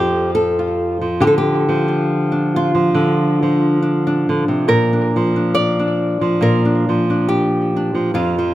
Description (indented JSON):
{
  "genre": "folk, solo fingerstyle acoustic guitar",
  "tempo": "69 BPM",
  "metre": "4/4",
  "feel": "swing 55% on 8ths",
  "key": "unclear",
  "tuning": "A4 = 439 Hz",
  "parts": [
    { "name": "nylon-string guitar", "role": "solo", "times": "0.0-8.5 s", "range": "F2 to D5", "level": "-14 LUFS", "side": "equal", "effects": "tape echo" }
  ],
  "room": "moderate recital hall reverb, RT60 1.5 s",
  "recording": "close, detailed microphones",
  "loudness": "-14 LUFS",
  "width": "side -14 dB against mid",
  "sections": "0.0-8.5 A section",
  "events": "none",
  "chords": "0.0 F; 1.2 Dm; 4.7 Bb"
}